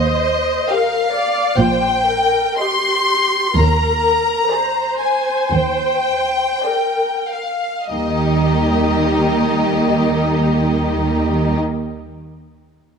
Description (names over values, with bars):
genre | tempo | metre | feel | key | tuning
classical, slow romantic movement for symphony orchestra | 44-72 BPM | 4/4 | rubato | Eb major | A4 = 440 Hz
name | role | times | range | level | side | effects
warm symphonic violin section | melody | 0.0-11.6 s | Eb5 to C6 | -19 LUFS | left 3 dB | none
warm symphonic viola section | accompaniment | 0.0-11.6 s | G3 to D5 | -20 LUFS | right 1 dB | none
warm symphonic cello section | bass | 0.0-11.6 s | Eb2 to Eb3 | -22 LUFS | right 2 dB | none
warm symphonic double bass section | bass | 0.0-11.6 s | Bb1 to Eb2 | -21 LUFS | right 3 dB | none
warm symphonic violin section | second line | 0.7-11.6 s | Eb4 to Eb5 | -22 LUFS | left 2 dB | none
room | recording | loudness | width
moderate scoring stage reverb, RT60 2.0 s | none | -15 LUFS | side -6 dB against mid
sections
0.0-7.9 A section; 7.9-12.4 B section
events
slowing down 0.0-7.9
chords
0.0 Eb; 3.6 Bb7/Eb; 7.9 Eb